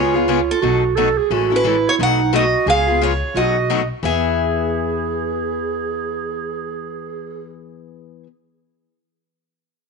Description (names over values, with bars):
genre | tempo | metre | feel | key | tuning
acoustic string swing (jazz manouche) | 176 BPM | 4/4 | swing 60% on 8ths | E major | A4 = 440 Hz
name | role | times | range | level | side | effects
picked steel-string acoustic guitar | melody | 0.0-8.2 s | A4 to F#5 | -20 LUFS | equal | none
breathy clarinet | second line | 0.0-7.5 s | D#4 to A4 | -21 LUFS | right 11 dB | none
picked steel-string acoustic guitar | accompaniment | 0.0-8.3 s | B2 to A4 | -22 LUFS | left 14 dB | none
upright bass | bass | 0.0-8.2 s | A1 to E2 | -26 LUFS | equal | none
room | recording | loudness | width
light reverb, small room reverb | 1960s-style stereo with parts hard left and right, nothing above 10.9 kHz | -16 LUFS | side -4 dB against mid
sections
0.0-4.0 A section; 4.0-6.8 B section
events
none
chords
0.0 C#7; 0.6 B7; 1.3 Amaj7; 2.0 B7; 2.7 C#7; 3.4 B7; 4.0 E